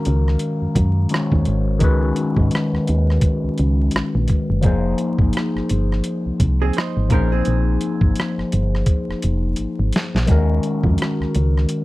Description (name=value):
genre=R&B, neo-soul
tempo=85 BPM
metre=4/4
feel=swing 57% on 16ths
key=unclear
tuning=A4 = 440 Hz
part: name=overdriven tine electric piano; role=accompaniment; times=0.0-11.8 s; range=Eb3 to Bb5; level=-21 LUFS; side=left 2 dB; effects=phaser
part: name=solid FM bass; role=bass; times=0.1-11.7 s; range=F1 to Ab2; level=-18 LUFS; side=equal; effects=none
part: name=boom bap sampler-style drum kit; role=drums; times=0.1-11.8 s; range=hi-hat, kick drum, rim click, snare drum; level=-20 LUFS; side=equal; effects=none
part: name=vintage hollow-body jazz guitar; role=second line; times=6.6-8.3 s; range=C4 to C5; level=-27 LUFS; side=right 9 dB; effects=none
room=little or no reverb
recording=dry, close 1970s-style studio recording, vinyl crackle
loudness=-16 LUFS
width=side -18 dB against mid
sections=0.0-11.8 A section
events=drum fill 9.6-10.3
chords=0.0 Ebm9; 1.8 Dbsus2; 4.6 Fm9; 10.3 Ebm7